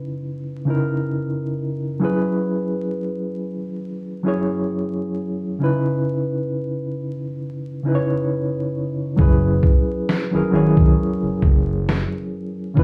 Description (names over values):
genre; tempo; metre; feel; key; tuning
lo-fi hip hop; 67 BPM; 4/4; swing 55% on 16ths; unclear; A4 = 441 Hz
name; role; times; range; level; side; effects
mellow reed electric piano; accompaniment; 0.0-12.8 s; C#3 to C#5; -24 LUFS; equal; fast tremolo
smooth gliding synth bass; bass; 9.2-12.8 s; F#1 to C#2; -22 LUFS; equal; none
lo-fi sampler-style drum kit; drums; 9.2-12.8 s; kick drum, snare drum; -18 LUFS; equal; none
room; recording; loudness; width
moderate studio reverb, RT60 0.6 s; vinyl crackle, studio reverb; -21 LUFS; mono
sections
0.0-9.2 A section; 9.2-12.8 B section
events
hi-hats muted 9.2-12.8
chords
0.0 C#m9; 2.0 F#9sus4; 5.6 C#m9; 9.2 F#9sus4